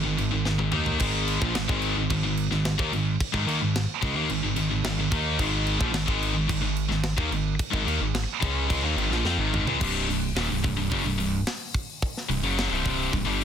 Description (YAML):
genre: heavy metal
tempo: 109 BPM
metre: 4/4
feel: straight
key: unclear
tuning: A4 = 436 Hz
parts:
  - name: high-gain distorted guitar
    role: riff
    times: 0.0-13.4 s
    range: C2 to Eb4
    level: -28 LUFS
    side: left 10 dB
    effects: distortion
  - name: high-gain distorted guitar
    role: riff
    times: 0.0-13.4 s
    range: C2 to Eb4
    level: -29 LUFS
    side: right 11 dB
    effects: distortion
  - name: smooth synth bass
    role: bass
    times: 0.0-13.4 s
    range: C1 to F2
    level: -29 LUFS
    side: equal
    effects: none
  - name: tight metal drum kit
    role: drums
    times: 0.2-13.4 s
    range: crash cymbal, hi-hat, kick drum, snare drum, toms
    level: -30 LUFS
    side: equal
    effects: soft clipping on kick
room: light reverb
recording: dense, heavily limited modern master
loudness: -23 LUFS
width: side -8 dB against mid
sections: 0.0-9.8 A section; 9.8-13.4 B section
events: drum fill 0.5-1.0, 9.3-9.8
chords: 0.0 Ab5; 9.8 C5